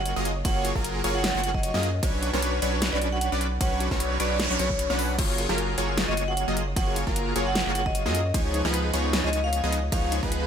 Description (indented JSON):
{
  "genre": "future bass",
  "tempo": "152 BPM",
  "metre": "4/4",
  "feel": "swing 55% on 16ths, half-time",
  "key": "F# major",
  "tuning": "A4 = 442 Hz",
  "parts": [
    { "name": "vibraphone with hard mallets", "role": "melody", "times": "0.0-10.1 s", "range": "C#5 to F#5", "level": "-32 LUFS", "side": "right 1 dB", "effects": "sidechain pumping, dub echo" },
    { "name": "airy dreamy lead", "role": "arpeggios", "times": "0.0-10.5 s", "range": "A#4 to F#5", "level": "-37 LUFS", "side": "left 1 dB", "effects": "chorus, sidechain pumping" },
    { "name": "supersaw stab", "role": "riff", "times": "0.0-10.5 s", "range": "E#3 to F#5", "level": "-28 LUFS", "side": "equal", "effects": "sidechain pumping" },
    { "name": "saturated sub bass", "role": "bass", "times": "0.0-10.5 s", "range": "F#1 to F#2", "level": "-29 LUFS", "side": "equal", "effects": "sidechain pumping" },
    { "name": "thumb-piano-like synth pluck", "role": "arpeggios", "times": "0.1-10.5 s", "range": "D#4 to B5", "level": "-39 LUFS", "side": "equal", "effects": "none" },
    { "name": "big-room dance drum kit", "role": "drums", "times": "0.1-10.4 s", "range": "crash cymbal, hi-hat, ride cymbal, snare drum", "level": "-31 LUFS", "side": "equal", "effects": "none" },
    { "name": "electronic kick drum", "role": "drums", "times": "0.4-10.3 s", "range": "none", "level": "-28 LUFS", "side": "equal", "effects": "none" },
    { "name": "noise sweep", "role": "sound effects", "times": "4.0-5.2 s", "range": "none", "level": "-35 LUFS", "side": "right 5 dB", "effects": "none" }
  ],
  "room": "light reverb, digital ambience",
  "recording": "none",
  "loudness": "-23 LUFS",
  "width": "side -8 dB against mid",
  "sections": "0.0-10.5 A section",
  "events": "noise sweep 4.0-5.2",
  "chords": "0.0 F#maj9; 2.0 Bmadd9; 5.2 F#maj9; 8.3 C#9",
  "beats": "0.05 | 0.45 0.84 1.24 1.63 | 2.03 2.42 2.82 3.21 | 3.61 4.00 4.40 4.79 | 5.19 5.58 5.97 6.37 | 6.76 7.16 7.55 7.95 | 8.34 8.74 9.13 9.53 | 9.92 10.32"
}